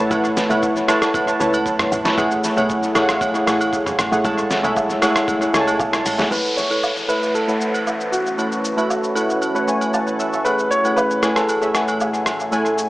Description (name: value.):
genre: amapiano.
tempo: 116 BPM.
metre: 4/4.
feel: straight.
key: A major.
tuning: A4 = 440 Hz.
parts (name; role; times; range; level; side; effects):
warm analog keys; accompaniment; 0.0-12.9 s; G#3 to A6; -19 LUFS; equal; chorus, low-pass filter, analog delay.
woody log drum bass; bass; 0.0-6.3 s; A1 to C#2; -31 LUFS; equal; none.
trip hop sampler-style drum kit; drums; 0.1-12.9 s; hi-hat, kick drum, rim click, shaker, snare drum, toms; -24 LUFS; equal; analog delay.
agogo bells and woodblock; percussion; 0.1-12.7 s; none; -27 LUFS; right 2 dB; analog delay.
warm grand piano; melody; 6.3-12.9 s; F#4 to C#5; -22 LUFS; equal; low-pass filter, analog delay.
deep dark ambient pad; sustained chords; 7.5-12.9 s; A2 to G#5; -29 LUFS; equal; chorus, built-in reverb, low-pass filter.
downlifter; sound effects; 6.3-10.5 s; none; -28 LUFS; equal; none.
room: moderate echo chamber reverb, RT60 1.3 s.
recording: echo-heavy mix, small speaker sound.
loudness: -16 LUFS.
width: side -18 dB against mid.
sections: 0.0-6.3 A section; 6.3-12.9 B section.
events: drop 0.0-6.3; filter sweep 6.3-12.9; synth keys fill 9.4-10.5.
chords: 0.0 A69; 2.2 F#m9/A; 6.3 A69; 10.5 F#m9/A.